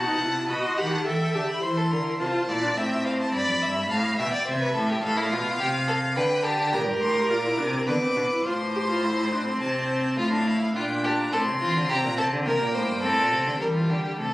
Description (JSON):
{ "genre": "classical, baroque-style fugue for string quartet", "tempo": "105 BPM", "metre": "3/4", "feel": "straight", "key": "F major from 6.7 s", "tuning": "A4 = 440 Hz", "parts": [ { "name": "rich violin", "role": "melody", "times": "0.0-13.6 s", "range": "E5 to D6", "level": "-30 LUFS", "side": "left 1 dB", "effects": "none" }, { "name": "rich violin", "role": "second line", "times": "0.0-14.3 s", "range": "D4 to F#5", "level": "-26 LUFS", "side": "equal", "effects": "none" }, { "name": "warm viola", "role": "accompaniment", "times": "0.0-3.3, 6.7-14.3 s", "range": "G3 to A4", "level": "-28 LUFS", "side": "equal", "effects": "none" }, { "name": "rich cello", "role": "bass", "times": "0.0-14.3 s", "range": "F2 to E3", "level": "-28 LUFS", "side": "equal", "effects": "none" } ], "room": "wet recital hall reverb, RT60 1.7 s", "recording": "recorded on a phone in the room, studio ambience, compression", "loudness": "-22 LUFS", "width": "side -18 dB against mid", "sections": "0.0-10.2 A section; 10.2-13.6 B section", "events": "none", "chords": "0.0 B7; 1.1 Em; 1.6 C7; 2.8 F/A (rootless); 3.3 G; 4.5 C; 5.0 F/A; 6.2 Gadd9/D; 6.7 Gm; 7.9 Bmadd11; 8.5 F/A; 9.6 Am/C; 10.2 F/A; 11.9 C5; 13.0 Am7; 13.6 Em" }